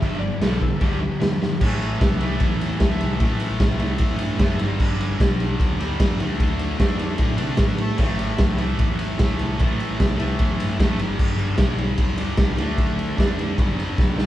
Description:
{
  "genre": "garage rock duo or trio",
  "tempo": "150 BPM",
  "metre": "4/4",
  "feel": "straight",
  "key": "A minor",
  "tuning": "A4 = 439 Hz",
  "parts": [
    { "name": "clean lap steel guitar", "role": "melody", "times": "0.0-1.6 s", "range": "G4 to E5", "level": "-34 LUFS", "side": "equal", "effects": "none" },
    { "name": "thick fuzz guitar", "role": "riff", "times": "0.0-14.3 s", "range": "G2 to D4", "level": "-25 LUFS", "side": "equal", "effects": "distortion" },
    { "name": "overdriven picked electric bass", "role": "bass", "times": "0.0-14.3 s", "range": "F#1 to C3", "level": "-28 LUFS", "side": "equal", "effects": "tube saturation" },
    { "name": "raw garage drum kit", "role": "drums", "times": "0.0-14.3 s", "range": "crash cymbal, kick drum, ride cymbal, snare drum", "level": "-21 LUFS", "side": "equal", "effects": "none" }
  ],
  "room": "light reverb",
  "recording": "band playing live in one room",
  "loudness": "-19 LUFS",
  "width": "side -13 dB against mid",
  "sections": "0.0-1.6 A section; 1.6-14.3 B section",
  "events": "drum fill 1.4, 14.0",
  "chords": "0.0 G; 1.6 Am; 4.6 G; 6.2 Dm; 8.0 Am; 11.0 G; 12.6 Dm; 13.6 G"
}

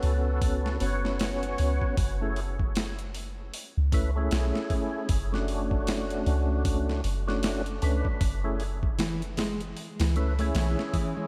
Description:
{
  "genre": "trip hop",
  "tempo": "77 BPM",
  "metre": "4/4",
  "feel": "swing 59% on 16ths",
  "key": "F# minor",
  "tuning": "A4 = 440 Hz",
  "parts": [
    { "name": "percussive tonewheel organ", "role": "accompaniment", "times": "0.0-11.3 s", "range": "A3 to C#5", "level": "-34 LUFS", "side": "equal", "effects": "overdrive, chorus vibrato, slow rotary speaker, harmonic tremolo, vintage 12-bit sampler grit, tape echo" },
    { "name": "soft 808-style bass", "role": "bass", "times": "0.0-10.8 s", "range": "F#1 to C#2", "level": "-31 LUFS", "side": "equal", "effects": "none" },
    { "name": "dusty soul sampler-style drum kit", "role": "drums", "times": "0.0-11.2 s", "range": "hi-hat, kick drum, snare drum", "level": "-33 LUFS", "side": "equal", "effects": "overdrive, studio reverb" },
    { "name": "nylon-string guitar", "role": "arpeggios", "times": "9.0-11.3 s", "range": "E3 to C#4", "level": "-34 LUFS", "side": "equal", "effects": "tape echo" }
  ],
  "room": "moderate lush hall reverb, RT60 3.1 s",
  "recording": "dreamy mix soaked in reverb",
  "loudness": "-28 LUFS",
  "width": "mono",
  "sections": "0.0-11.3 A section",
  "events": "none",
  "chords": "0.0 F#madd11; 2.0 F#m9; 5.1 Bm7/F#; 8.2 F#m9"
}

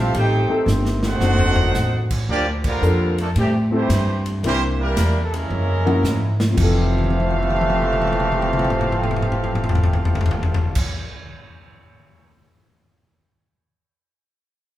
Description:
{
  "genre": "jazz, big band swing",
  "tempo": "112 BPM",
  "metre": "4/4",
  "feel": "swing 66% on 8ths",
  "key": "F major",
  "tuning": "A4 = 440 Hz",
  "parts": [
    { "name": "bright trumpet section", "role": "melody", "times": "0.0-10.8 s", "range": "G3 to G5", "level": "-25 LUFS", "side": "right 1 dB", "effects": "none" },
    { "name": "warm trombone section", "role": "second line", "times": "0.0-10.8 s", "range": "F2 to G4", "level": "-26 LUFS", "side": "right 1 dB", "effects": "none" },
    { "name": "clear trombone section", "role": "sustained chords", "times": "0.0-2.3 s", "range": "D3 to G4", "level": "-30 LUFS", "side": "equal", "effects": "none" },
    { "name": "upright bass", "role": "bass", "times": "0.0-10.8 s", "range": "F1 to A2", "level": "-21 LUFS", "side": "equal", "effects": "none" },
    { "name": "swinging big-band drum kit", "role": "drums", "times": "0.1-12.3 s", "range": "crash cymbal, hi-hat, kick drum, ride cymbal, snare drum, toms", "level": "-23 LUFS", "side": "left 1 dB", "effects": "none" },
    { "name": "warm grand piano", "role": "accompaniment", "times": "0.5-11.1 s", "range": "F2 to C7", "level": "-26 LUFS", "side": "left 2 dB", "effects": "none" }
  ],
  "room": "wet large studio reverb, RT60 1.3 s",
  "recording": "heard from further back in the room",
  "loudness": "-17 LUFS",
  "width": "side -14 dB against mid",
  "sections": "0.0-2.3 A section; 2.3-6.6 B section; 6.6-10.8 C section",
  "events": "drum fill 0.7-1.8, 5.5-6.6, 6.8-10.7; band accent 2.6",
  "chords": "0.1 Am7b5; 1.2 D7b9; 2.3 Gm7; 3.4 Am7; 4.4 C9; 5.5 Gb13; 6.6 Fmaj9"
}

